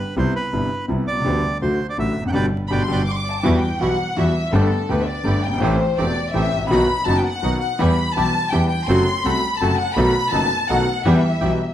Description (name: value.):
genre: tango.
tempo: 165 BPM.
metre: 3/4.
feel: rubato.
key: G major, E minor from 3.4 s.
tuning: A4 = 440 Hz.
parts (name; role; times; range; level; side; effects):
bandoneon; melody; 0.0-3.0 s; B4 to G5; -26 LUFS; right 3 dB; none.
bright concert grand piano; accompaniment; 0.2-11.6 s; E1 to G4; -20 LUFS; left 1 dB; none.
clear double bass; bass; 0.2-11.6 s; E1 to E2; -24 LUFS; equal; none.
warm studio violin section; second line; 2.7-11.7 s; A4 to D6; -22 LUFS; left 3 dB; slapback echo.
bandoneon; stabs; 3.4-11.6 s; G3 to A4; -29 LUFS; right 4 dB; slapback echo.
room: wet large studio reverb, RT60 1.3 s.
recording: vinyl crackle.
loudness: -17 LUFS.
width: side -11 dB against mid.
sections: 0.0-3.4 A section; 3.4-11.7 B section.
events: band accent 2.3-3.4; violin section solo 3.4-11.7.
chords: 0.2 Cmaj7; 1.2 G/D; 1.6 D; 2.3 G; 3.4 Emadd9; 4.5 Gadd9; 5.6 Am7; 6.7 B; 7.8 Em; 8.9 F#dim; 10.0 B7; 11.0 Em.